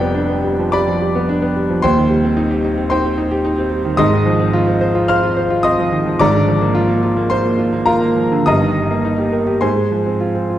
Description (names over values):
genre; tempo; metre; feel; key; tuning
classical, virtuoso piano study; 109 BPM; 4/4; uneven beats, rubato; C minor; A4 = 439 Hz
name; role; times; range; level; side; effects
warm concert grand piano; solo; 0.0-10.6 s; Eb1 to F6; -14 LUFS; equal; none
room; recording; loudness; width
wet recital hall reverb, RT60 1.8 s; none; -13 LUFS; side -12 dB against mid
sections
0.0-10.6 A section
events
none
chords
0.0 G7/F; 1.8 Cm/Eb; 4.0 Fm7/Ab; 6.2 Bb7/Ab; 8.5 Eb/G; 9.6 Fm/Ab